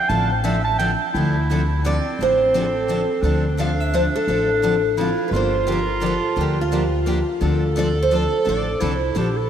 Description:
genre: acoustic string swing (jazz manouche).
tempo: 172 BPM.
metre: 3/4.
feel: swing 60% on 8ths.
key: D minor.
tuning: A4 = 440 Hz.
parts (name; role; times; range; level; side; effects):
clear clarinet; second line; 0.0-9.5 s; C4 to A5; -24 LUFS; right 3 dB; analog delay.
picked steel-string acoustic guitar; accompaniment; 0.1-9.3 s; D3 to A4; -27 LUFS; left 5 dB; none.
picked steel-string acoustic guitar; accompaniment; 0.1-9.3 s; D3 to A4; -31 LUFS; right 5 dB; none.
upright bass; bass; 0.1-9.5 s; G1 to D2; -23 LUFS; equal; none.
picked steel-string acoustic guitar; melody; 1.9-9.1 s; F4 to F5; -21 LUFS; right 1 dB; wide subtle chorus, analog delay.
room: wet huge ambient reverb, RT60 5.2 s.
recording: dreamy mix soaked in reverb.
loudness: -18 LUFS.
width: side -9 dB against mid.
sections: 0.0-1.1 A section; 1.1-9.5 B section.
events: clarinet solo 0.0-1.1.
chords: 0.0 Dm7; 5.3 Gm7; 7.4 Dm7.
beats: | 0.10 0.45 0.80 | 1.14 1.49 1.84 | 2.19 2.54 2.89 | 3.24 3.59 3.94 | 4.28 4.63 4.98 | 5.33 5.68 6.03 | 6.38 6.72 7.07 | 7.42 7.77 8.12 | 8.47 8.82 9.16.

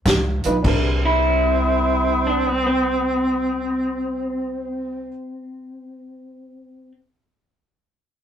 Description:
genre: electric blues shuffle.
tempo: 100 BPM.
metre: 4/4.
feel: swing 66% on 8ths.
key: C mixolydian.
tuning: A4 = 435 Hz.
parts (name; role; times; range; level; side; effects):
upright bass; bass; 0.1-5.1 s; Cb2 to Db2; -25 LUFS; equal; none.
vintage drum kit; drums; 0.1-0.8 s; crash cymbal, hi-hat, kick drum, snare drum; -22 LUFS; equal; none.
dark upright piano; accompaniment; 0.5-5.1 s; D4 to Cb5; -26 LUFS; right 2 dB; none.
breathy tenor saxophone; second line; 0.6-5.1 s; C4; -24 LUFS; right 2 dB; slapback echo.
electric guitar through a small old amp; melody; 1.1-6.9 s; C4 to E4; -22 LUFS; left 1 dB; none.
room: moderate small room reverb, RT60 0.5 s.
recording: rough rehearsal-room recording.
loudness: -18 LUFS.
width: side -9 dB against mid.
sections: 0.6-5.4 A section.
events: none.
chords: 0.1 Db9; 0.6 C9.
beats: 0.06 | 0.64 1.24 1.84 2.44 | 3.05 3.65 4.25 4.85.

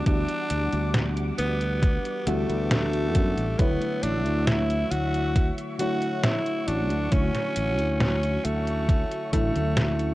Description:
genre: vaporwave.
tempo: 68 BPM.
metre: 4/4.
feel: straight.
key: D major.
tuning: A4 = 440 Hz.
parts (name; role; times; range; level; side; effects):
growling tenor saxophone; melody; 0.0-10.1 s; A3 to F#4; -29 LUFS; equal; tape echo.
mellow FM electric piano; accompaniment; 0.0-10.1 s; D3 to C#5; -30 LUFS; left 1 dB; wide subtle chorus.
soft string machine; sustained chords; 0.0-10.1 s; G3 to D6; -37 LUFS; equal; ensemble chorus.
fretless electric bass; bass; 0.1-10.1 s; A1 to F#2; -27 LUFS; equal; tube saturation.
detuned 8-bit digital drum machine; drums; 0.1-10.1 s; hi-hat, snare drum; -26 LUFS; equal; overdrive.
electronic kick drum; drums; 0.1-9.5 s; none; -23 LUFS; equal; overdrive.
room: digital ambience.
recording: worn, warbling old tape, cassette tape, warbly pitch drift.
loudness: -22 LUFS.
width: side -17 dB against mid.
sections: 0.0-10.1 A section.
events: none.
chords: 0.0 Em9; 3.6 Dmaj9.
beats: | 0.06 0.95 1.83 2.71 | 3.59 4.47 5.36 6.24 | 7.12 8.01 8.89 9.77.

